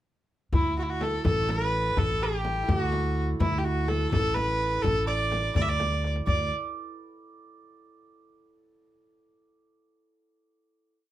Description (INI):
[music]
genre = Persian modal ensemble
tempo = 84 BPM (dotted quarters)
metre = 6/8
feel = straight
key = D dastgah mahur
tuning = A4 = 439 Hz
[part]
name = bright kamancheh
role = melody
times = 0.5-6.5 s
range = E4 to E5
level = -28 LUFS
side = equal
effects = none
[part]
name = santur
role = second line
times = 0.5-7.1 s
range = E4 to D5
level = -34 LUFS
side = right 3 dB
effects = none
[part]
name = upright bass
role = bass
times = 0.5-6.5 s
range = A1 to D2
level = -29 LUFS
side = equal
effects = none
[part]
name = frame drum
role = percussion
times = 0.5-6.5 s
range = none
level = -32 LUFS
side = left 2 dB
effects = none
[part]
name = tombak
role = percussion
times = 0.5-6.5 s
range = none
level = -31 LUFS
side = left 1 dB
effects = none
[sound]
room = light reverb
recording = none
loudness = -24 LUFS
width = side -13 dB against mid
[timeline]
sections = 0.5-6.3 A section; 6.3-7.7 final note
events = drum fill 5.8-6.3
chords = none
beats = | 0.53 1.25 | 1.97 2.69 | 3.41 4.12 | 4.84 5.56 | 6.27 6.99